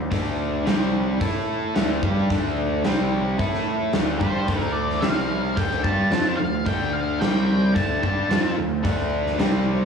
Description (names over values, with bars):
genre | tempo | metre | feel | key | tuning
blues rock power trio and southern rock | 110 BPM | 4/4 | straight | D minor | A4 = 440 Hz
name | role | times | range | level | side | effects
cranked stack guitar | riff | 0.0-9.8 s | C3 to A4 | -24 LUFS | equal | overdrive, slapback echo
fuzz picked electric bass | bass | 0.0-9.8 s | C2 to A2 | -27 LUFS | equal | overdrive
big rock drum kit | drums | 0.1-9.5 s | hi-hat, kick drum, snare drum | -25 LUFS | equal | none
octave-fuzz lead guitar | melody | 4.2-8.5 s | C5 to A5 | -28 LUFS | left 1 dB | distortion, plate reverb, slapback echo, tape echo
room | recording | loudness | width
moderate club reverb, RT60 0.7 s | live gig heard through the venue's PA, club reverb, small room ambience | -20 LUFS | side -6 dB against mid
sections
0.0-9.8 A section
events
none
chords
0.0 D5; 0.7 C5; 1.2 A5; 1.8 D5; 2.8 C5; 3.4 A5; 3.9 D5; 5.0 C5; 5.6 Dm; 7.2 C5; 7.8 Dm